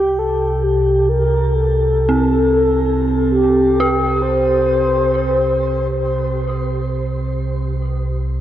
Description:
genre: dark ambient drone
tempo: free time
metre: none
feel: none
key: unclear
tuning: A4 = 440 Hz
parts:
  - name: mellow horn-like synth lead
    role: melody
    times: 0.0-6.5 s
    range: G4 to C5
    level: -17 LUFS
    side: left 1 dB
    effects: chorus, shimmer reverb, tape echo
  - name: deep rumbling drone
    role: drone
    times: 0.0-8.4 s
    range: C2 to C3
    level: -20 LUFS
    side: right 1 dB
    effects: built-in reverb
  - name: dark detuned synth bell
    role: arpeggios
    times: 2.1-8.4 s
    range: C4 to G4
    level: -20 LUFS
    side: right 2 dB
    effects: chorus, shimmer reverb, tape echo
room: wet huge ambient reverb, RT60 8.2 s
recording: worn, warbling old tape, cassette tape, warbly pitch drift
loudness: -14 LUFS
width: side -12 dB against mid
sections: 0.0-8.4 A section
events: filter sweep on synth drone 0.0-8.4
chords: 0.0 C5

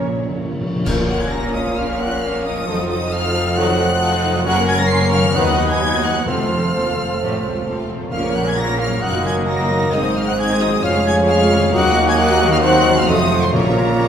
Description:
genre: classical, dramatic, fast romantic movement for symphony orchestra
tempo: 132 BPM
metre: 4/4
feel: straight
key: Bb minor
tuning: A4 = 442 Hz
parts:
  - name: rich studio violin section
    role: melody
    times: 0.0-14.1 s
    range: Db5 to C7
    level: -24 LUFS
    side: left 2 dB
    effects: none
  - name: mellow cor anglais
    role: second line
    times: 0.0-14.1 s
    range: C5 to F5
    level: -27 LUFS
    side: right 2 dB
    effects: none
  - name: silver concert flute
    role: second line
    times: 0.0-14.1 s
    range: Bb4 to C6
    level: -24 LUFS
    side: equal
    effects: none
  - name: warm clarinet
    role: second line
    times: 0.0-14.1 s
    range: F4 to B4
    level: -26 LUFS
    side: left 2 dB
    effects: none
  - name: warm symphonic violin section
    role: second line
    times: 0.0-14.1 s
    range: C4 to F5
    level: -27 LUFS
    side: left 2 dB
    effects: none
  - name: clear symphonic viola section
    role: accompaniment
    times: 0.0-14.1 s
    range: Eb3 to F#4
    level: -26 LUFS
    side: equal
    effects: none
  - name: mellow bassoon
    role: accompaniment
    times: 0.0-14.1 s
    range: A3 to Db4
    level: -25 LUFS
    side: right 1 dB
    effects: none
  - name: dark French horn section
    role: sustained chords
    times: 0.0-14.1 s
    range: A3 to B4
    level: -28 LUFS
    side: left 2 dB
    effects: none
  - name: mellow trombone section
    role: sustained chords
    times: 0.0-14.1 s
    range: C3 to Bb3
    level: -25 LUFS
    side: right 2 dB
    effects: none
  - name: concert harp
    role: arpeggios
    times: 0.0-14.1 s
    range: F2 to F5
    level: -27 LUFS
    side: left 4 dB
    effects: none
  - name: clear studio double bass section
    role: bass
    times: 0.0-14.1 s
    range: F1 to D#2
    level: -26 LUFS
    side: right 1 dB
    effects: none
  - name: rich symphonic cello section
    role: bass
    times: 0.0-14.1 s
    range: Db2 to Bb2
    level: -24 LUFS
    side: right 2 dB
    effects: none
  - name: timpani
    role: percussion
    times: 0.0-1.5, 6.3-8.8, 13.5-14.1 s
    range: F2 to Bb2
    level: -25 LUFS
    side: equal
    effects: none
  - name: clash cymbals, concert bass drum and cymbal swell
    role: percussion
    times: 0.9-1.7, 11.7-14.1 s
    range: none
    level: -29 LUFS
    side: equal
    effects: none
room: wet recital hall reverb, RT60 1.4 s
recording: recorded in a church or concert hall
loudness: -15 LUFS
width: side -8 dB against mid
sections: 0.9-14.1 A section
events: timpani fill 0.0-0.9; band accent 0.9-1.3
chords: 0.0 Bbm; 2.7 F7b9; 4.5 Gb; 5.4 B/D#; 6.3 F; 8.1 Bbm; 9.0 Ebm/Gb; 9.9 Ab; 10.8 Db/F; 11.7 Ebm; 12.6 Cdim/Eb; 13.1 F7b9; 13.5 Bbm

